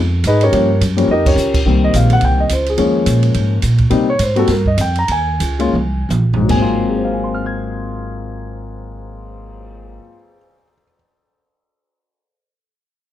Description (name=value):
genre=jazz piano trio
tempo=149-213 BPM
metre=4/4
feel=swing 59% on 8ths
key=Ab mixolydian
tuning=A4 = 440 Hz
part: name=upright bass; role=bass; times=0.0-10.0 s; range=Ab1 to C3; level=-17 LUFS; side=right 1 dB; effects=none
part: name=open jazz drum kit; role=drums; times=0.2-9.6 s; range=crash cymbal, cymbal swell, hi-hat, kick drum, ride cymbal, snare drum, toms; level=-22 LUFS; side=right 2 dB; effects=none
part: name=dark concert grand piano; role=melody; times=0.3-10.9 s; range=Ab2 to Ab6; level=-16 LUFS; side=left 2 dB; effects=none
room=little or no reverb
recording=close, detailed microphones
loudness=-13 LUFS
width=side -12 dB against mid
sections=0.0-1.7 A section; 1.7-6.5 B section; 6.5-9.7 C section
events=drum fill 1.1, 5.7-6.5; band accent 1.2; slowing down 3.9-6.5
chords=0.0 Db9; 0.5 Eb9; 1.7 Cm7; 2.8 Eb7sus4; 3.9 Cm7; 5.1 Eb7sus4; 6.5 Ab13